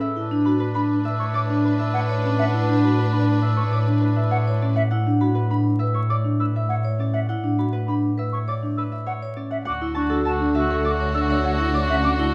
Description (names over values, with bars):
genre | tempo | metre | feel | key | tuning
classical, minimalist pattern music | 101 BPM | 4/4 | straight | unclear | A4 = 440 Hz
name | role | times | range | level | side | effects
Celtic harp | melody | 0.0-12.3 s | G#4 to B5 | -33 LUFS | equal | none
vibraphone with medium hard mallets | arpeggios | 0.0-12.3 s | C#4 to C#5 | -27 LUFS | equal | none
warm oboe | second line | 0.2-4.7, 9.7-12.3 s | D4 to F#4 | -32 LUFS | equal | none
rich studio violin section | sustained chords | 0.2-4.7, 9.7-12.3 s | D4 to B4 | -33 LUFS | equal | none
warm double bass | bass | 0.2-12.3 s | D2 to A2 | -26 LUFS | equal | none
hollow concert flute | arpeggios | 0.8-12.1 s | E5 to E6 | -30 LUFS | equal | none
room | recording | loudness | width
moderate large studio reverb, RT60 0.9 s | dark, warm production, vinyl crackle | -22 LUFS | mono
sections
0.0-9.7 A section; 9.7-12.3 B section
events
none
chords
0.2 Bmadd9/A; 9.7 Dmaj7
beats
| 0.16 0.76 1.35 1.95 | 2.54 3.13 3.73 4.32 | 4.92 5.51 6.10 6.70 | 7.29 7.89 8.48 9.07 | 9.67 10.26 10.86 11.45 | 12.04